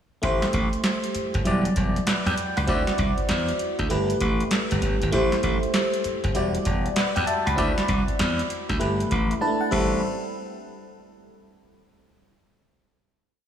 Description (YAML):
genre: R&B, new jack swing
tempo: 98 BPM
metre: 4/4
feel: swing 64% on 16ths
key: A dorian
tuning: A4 = 442 Hz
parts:
  - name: FM electric piano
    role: accompaniment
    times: 0.2-10.0 s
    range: F#3 to B5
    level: -25 LUFS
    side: equal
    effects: chorus, phaser, slapback echo
  - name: glassy slap bass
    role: bass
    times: 0.2-10.0 s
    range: E1 to E2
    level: -25 LUFS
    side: equal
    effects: none
  - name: booming analog drum machine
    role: drums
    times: 0.2-9.9 s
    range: crash cymbal, handclaps, hi-hat, kick drum, snare drum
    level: -27 LUFS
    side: equal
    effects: overdrive
room: moderate lush hall reverb, RT60 2.8 s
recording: big arena sound, small room reverb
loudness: -21 LUFS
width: side -9 dB against mid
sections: 0.2-10.0 verse; 10.0-12.5 final hit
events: FM electric piano fill 9.1-10.0; silent gap 9.4-10.0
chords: 0.2 Am7; 1.5 Em9; 2.7 D9; 3.9 G69; 5.1 Am7; 6.3 Em9; 7.6 D9; 8.8 G69; 9.4 E7sus4; 9.7 Am7; 10.0 N.C.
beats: | 0.23 0.84 1.45 2.06 | 2.68 3.29 3.90 4.51 | 5.12 5.74 6.35 6.96 | 7.57 8.19 8.80 9.41 | 10.02